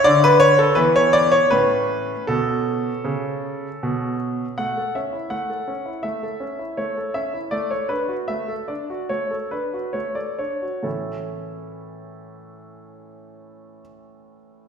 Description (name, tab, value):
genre	classical-period piano sonatina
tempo	65-85 BPM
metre	4/4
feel	rubato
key	A major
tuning	A4 = 440 Hz
part	clear concert grand piano	solo	0.0-14.7 s	A2 to F#5	-19 LUFS	equal	none
room	wet recital hall reverb, RT60 1.7 s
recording	heard from further back in the room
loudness	-19 LUFS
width	side -7 dB against mid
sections	0.0-4.6 A section; 4.6-10.8 B section; 10.8-14.4 C section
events	slowing down 3.0-10.8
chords	0.1 N.C.; 0.8 E5; 1.5 A; 7.5 D/A; 10.8 A